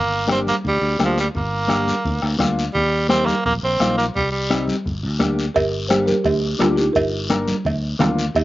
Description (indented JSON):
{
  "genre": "latin, cumbia",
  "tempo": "171 BPM",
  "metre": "4/4",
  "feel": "straight",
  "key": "G minor",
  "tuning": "A4 = 443 Hz",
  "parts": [
    { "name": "raspy tenor saxophone", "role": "second line", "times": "0.0-4.7 s", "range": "F3 to C4", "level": "-20 LUFS", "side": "right 2 dB", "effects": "none" },
    { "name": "fingered electric bass", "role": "bass", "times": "0.0-8.4 s", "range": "G1 to Eb2", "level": "-25 LUFS", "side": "equal", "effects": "none" },
    { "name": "mellow electric guitar", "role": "accompaniment", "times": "0.3-8.3 s", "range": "Bb3 to Bb4", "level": "-21 LUFS", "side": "left 2 dB", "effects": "none" },
    { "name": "bombo", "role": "percussion", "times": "0.3-8.4 s", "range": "none", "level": "-27 LUFS", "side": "left 2 dB", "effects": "none" },
    { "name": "congas", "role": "percussion", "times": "0.3-8.2 s", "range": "none", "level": "-26 LUFS", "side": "right 1 dB", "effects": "none" },
    { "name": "guiro", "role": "percussion", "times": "0.3-8.4 s", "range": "none", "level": "-31 LUFS", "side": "left 4 dB", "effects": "none" },
    { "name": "folk marimba with medium mallets", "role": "melody", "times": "5.5-8.4 s", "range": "D4 to C5", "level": "-21 LUFS", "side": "right 1 dB", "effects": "slapback echo" },
    { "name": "cowbell and timbales", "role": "percussion", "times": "5.6-8.4 s", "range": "none", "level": "-22 LUFS", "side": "right 4 dB", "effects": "none" }
  ],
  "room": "little or no reverb",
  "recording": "recorded outdoors, with no room sound, nothing above 7.5 kHz",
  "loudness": "-17 LUFS",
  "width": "side -16 dB against mid",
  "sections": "0.0-5.6 A section; 5.6-8.4 B section",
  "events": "tenor saxophone solo 0.0-5.6",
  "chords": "0.0 Gm; 2.8 Eb; 4.2 Cm; 4.9 Gm"
}